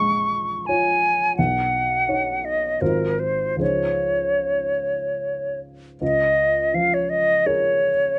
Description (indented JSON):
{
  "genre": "classical, impressionist duo for flute and grand piano",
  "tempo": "73-86 BPM",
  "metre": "3/4",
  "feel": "rubato",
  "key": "Db major",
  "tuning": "A4 = 441 Hz",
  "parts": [
    { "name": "bright concert flute", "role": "melody", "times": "0.0-8.2 s", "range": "Bb4 to Db6", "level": "-22 LUFS", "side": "equal", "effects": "none" },
    { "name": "dark baby grand piano", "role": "accompaniment", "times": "0.0-8.2 s", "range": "Ab1 to Db5", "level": "-29 LUFS", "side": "equal", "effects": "none" }
  ],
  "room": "light reverb",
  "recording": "nothing above 10.5 kHz",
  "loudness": "-21 LUFS",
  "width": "mono",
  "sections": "0.0-6.0 A section; 6.0-8.2 A section",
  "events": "none",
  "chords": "0.0 Bbm7; 1.4 Cbadd9; 2.8 Ab13; 3.6 Dbmaj9; 6.0 Db69",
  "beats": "0.68 | 1.37 2.08 2.81 | 3.60 4.41 5.21 | 6.01 6.74 7.46 | 8.18"
}